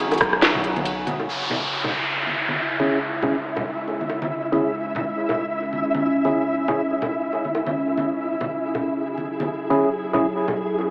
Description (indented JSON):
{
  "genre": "deep dubstep",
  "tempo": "139 BPM",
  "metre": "4/4",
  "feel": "swing 57% on 16ths, half-time",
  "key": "C# minor",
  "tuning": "A4 = 440 Hz",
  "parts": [
    { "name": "overtone-sweeping drone", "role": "sustained chords", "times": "0.0-10.9 s", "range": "C#3 to F#4", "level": "-28 LUFS", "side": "equal", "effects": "chorus, built-in reverb" },
    { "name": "saturated sub bass", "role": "bass", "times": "0.0-1.3 s", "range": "E1 to B1", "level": "-32 LUFS", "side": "equal", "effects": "tube saturation" },
    { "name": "garage drum kit", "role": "drums", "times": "0.1-1.2 s", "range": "hi-hat, ride cymbal, rim click, snare drum", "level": "-21 LUFS", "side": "equal", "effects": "none" },
    { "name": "bongos and congas", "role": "percussion", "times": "0.1-10.9 s", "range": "none", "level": "-29 LUFS", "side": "equal", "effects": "dub echo" },
    { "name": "downlifter", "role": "sound effects", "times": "1.3-4.7 s", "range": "none", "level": "-26 LUFS", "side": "equal", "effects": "none" },
    { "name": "flickering grainy texture", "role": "texture", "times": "2.0-10.9 s", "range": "E4 to E5", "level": "-26 LUFS", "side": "equal", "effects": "built-in reverb" },
    { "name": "percussive organ stab", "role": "stabs", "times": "2.8-6.8, 9.7-10.3 s", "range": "C#4 to G#4", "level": "-25 LUFS", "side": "equal", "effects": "chorus, cassette tape, dub echo" }
  ],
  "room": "moderate huge ambient reverb, RT60 8.9 s",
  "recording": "AM radio sound",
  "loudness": "-20 LUFS",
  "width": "side -33 dB against mid",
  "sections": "0.0-1.3 A section; 1.3-10.9 B section",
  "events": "drop 0.0-1.3; filter sweep on synth stab 1.3-10.9",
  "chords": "0.0 C#m"
}